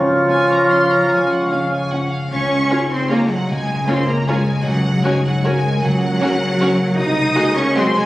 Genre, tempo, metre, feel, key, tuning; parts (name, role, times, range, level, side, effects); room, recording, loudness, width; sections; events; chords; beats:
classical, orchestral ballroom waltz; 153 BPM; 3/4; uneven beats, rubato; Db major; A4 = 440 Hz
bright clarinet; second line; 0.0-1.9 s; F4; -18 LUFS; equal
bright small flute group; second line; 0.0-2.1 s; Db6; -27 LUFS; equal
clear oboe; second line; 0.0-2.1 s; F5; -21 LUFS; equal
warm bassoon; accompaniment; 0.0-2.1 s; Db4; -20 LUFS; equal
dark French horn section; sustained chords; 0.0-2.1 s; F3 to Db4; -25 LUFS; equal
concert harp; arpeggios; 0.0-8.1 s; C3 to Db5; -22 LUFS; left 1 dB
rich studio cello section; bass; 0.0-8.1 s; F3 to Eb4; -20 LUFS; right 1 dB
rich studio double bass section; bass; 0.0-7.3 s; C2 to Db2; -28 LUFS; right 2 dB
rich studio violin section; melody; 0.3-8.1 s; Gb5 to Eb6; -23 LUFS; left 1 dB
rich studio violin section; second line; 0.3-7.8 s; Ab4 to C6; -27 LUFS; left 1 dB
warm studio viola section; accompaniment; 0.3-7.8 s; Ab3 to Gb4; -23 LUFS; right 1 dB
moderate concert hall reverb, RT60 2.2 s; recorded on a phone in the room, club reverb; -14 LUFS; side -16 dB against mid
0.0-2.3 A section; 2.3-8.1 B section
0.0 Db; 4.7 Gb/Db; 7.0 Ab7/C
0.29 0.72 | 1.11 1.51 1.92 | 2.31 2.71 3.11 | 3.50 3.88 4.29 | 4.66 5.05 5.45 | 5.83 6.21 6.60 | 6.98 7.36 7.77